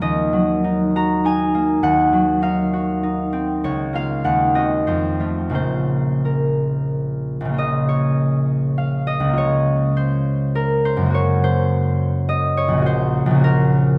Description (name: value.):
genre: classical, solo harp piece.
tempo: 86-108 BPM.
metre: 3/4.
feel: rubato.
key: Bb minor.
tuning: A4 = 439 Hz.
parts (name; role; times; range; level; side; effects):
concert harp; solo; 0.0-14.0 s; Bb1 to Bb5; -19 LUFS; equal; none.
room: wet church reverb, RT60 3.3 s.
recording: none.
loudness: -19 LUFS.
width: mono.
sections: 0.0-7.6 A section; 7.6-14.0 B section.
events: none.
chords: 0.0 Ebm; 1.8 Cdim/Eb; 3.6 Bbm/Db; 4.2 Cdim/Eb; 4.9 F; 5.6 Bbm; 9.4 Bbm/Db; 11.1 Gb; 12.9 Gb/Bb.